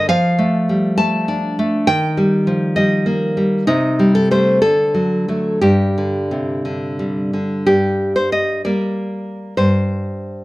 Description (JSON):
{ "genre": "romantic piece for solo classical guitar", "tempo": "58-68 BPM (dotted quarters)", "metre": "6/8", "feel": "rubato", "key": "G minor", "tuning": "A4 = 440 Hz", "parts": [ { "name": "nylon-string guitar", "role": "solo", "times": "0.0-10.4 s", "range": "G2 to A5", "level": "-15 LUFS", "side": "equal", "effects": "none" } ], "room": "light reverb", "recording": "close, detailed microphones", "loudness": "-15 LUFS", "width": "side -18 dB against mid", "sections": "0.0-7.7 A section; 7.7-10.4 B section", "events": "none", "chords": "0.1 Dm/F; 1.9 Eb; 3.7 Am7b5/C; 4.6 D; 5.6 G5; 7.7 Gm; 9.6 C5/G" }